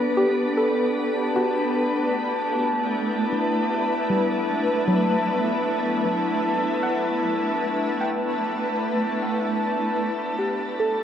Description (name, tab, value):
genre	ambient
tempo	76 BPM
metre	3/4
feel	straight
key	G major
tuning	A4 = 440 Hz
part	granular cloud pad	sustained chords	0.0-11.0 s	A3 to E5	-24 LUFS	equal	built-in reverb
part	organ-like drone	drone	0.0-11.0 s	B3 to D4	-28 LUFS	left 1 dB	ensemble chorus, built-in reverb
part	soft round pluck	arpeggios	0.2-11.0 s	F#3 to G5	-28 LUFS	equal	chorus, tape echo
part	glass harmonica	texture	1.0-10.4 s	A5	-28 LUFS	equal	none
room	wet shimmer reverb, RT60 8.4 s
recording	worn, warbling old tape, cassette tape, warbly pitch drift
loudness	-21 LUFS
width	side -9 dB against mid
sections	0.0-10.4 A section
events	none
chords	0.0 Gmaj7; 10.4 G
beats	0.18 | 0.97 1.76 2.54 | 3.33 4.10 4.88 | 5.65 6.43 7.22 | 8.00 8.79 9.59 | 10.40